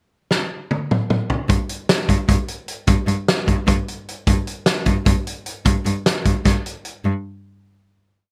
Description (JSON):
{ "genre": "math rock and midwest emo", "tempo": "302 BPM (eighths)", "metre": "7/8", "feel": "straight", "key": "unclear", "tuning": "A4 = 441 Hz", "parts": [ { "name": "loose indie drum kit", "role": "drums", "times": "0.3-6.9 s", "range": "hi-hat, kick drum, snare drum, toms", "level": "-21 LUFS", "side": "equal", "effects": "gated reverb" }, { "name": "rich cello", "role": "bass", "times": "1.5-7.1 s", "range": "G2", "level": "-23 LUFS", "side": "equal", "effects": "none" } ], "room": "little or no reverb", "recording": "bright 1980s-style digital production", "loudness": "-20 LUFS", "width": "mono", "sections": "0.1-1.5 pickup bar; 1.5-7.1 A section; 7.1-8.3 final note", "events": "drum fill 0.3-1.5", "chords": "none", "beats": "| 0.11 0.31 0.50 0.70 0.90 1.10 1.30 | 1.50 1.69 1.89 2.09 2.29 2.49 2.69 | 2.88 3.08 3.28 3.48 3.68 3.88 4.08 | 4.28 4.47 4.67 4.87 5.07 5.27 5.47 | 5.67 5.86 6.06 6.26 6.46 6.66 6.86 | 7.05" }